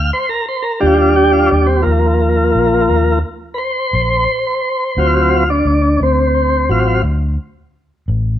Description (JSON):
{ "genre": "slow blues", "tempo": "58 BPM (dotted quarters)", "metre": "12/8", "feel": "straight", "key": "unclear", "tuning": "A4 = 436 Hz", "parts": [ { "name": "tonewheel organ", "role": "sustained chords", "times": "0.0-7.0 s", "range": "F3 to F5", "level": "-13 LUFS", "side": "equal", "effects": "slow rotary speaker" }, { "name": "vintage muted fingered electric bass", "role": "bass", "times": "0.0-8.4 s", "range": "A1 to Eb2", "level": "-16 LUFS", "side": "equal", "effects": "none" } ], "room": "moderate stone room reverb, RT60 1.1 s", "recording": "band playing live in one room", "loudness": "-12 LUFS", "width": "side -11 dB against mid", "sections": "0.0-8.4 A section", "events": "tonewheel organ solo 0.0-8.4", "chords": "0.0 Gm7 (rootless); 0.8 Ebmaj7; 5.0 D7#9", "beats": "| 0.82 1.86 2.90 3.93 | 4.97 6.01 7.05 8.09" }